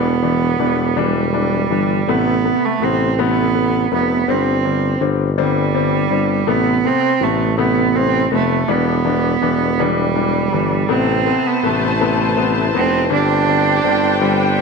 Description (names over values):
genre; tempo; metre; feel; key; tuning
six-eight pop ballad; 54 BPM (dotted quarters); 6/8; straight; A minor; A4 = 440 Hz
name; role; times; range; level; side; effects
rich cello; melody; 0.0-14.6 s; G3 to D4; -18 LUFS; right 9 dB; slapback echo
clear concert grand piano; accompaniment; 0.0-14.6 s; C3 to D4; -20 LUFS; left 13 dB; none
mellow tuba; bass; 0.0-14.6 s; E1 to A1; -20 LUFS; left 1 dB; none
warm studio string section; sustained chords; 10.9-14.6 s; D4 to A5; -20 LUFS; left 3 dB; none
room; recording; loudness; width
moderate echo chamber reverb, RT60 1.7 s, studio ambience; 1960s-style stereo with parts hard left and right; -14 LUFS; side -4 dB against mid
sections
0.0-14.6 A section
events
none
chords
0.0 Em7; 2.1 Amadd9; 4.3 Gsus4; 6.5 Amadd9; 8.7 Em7; 10.9 Amadd9; 13.1 Gsus4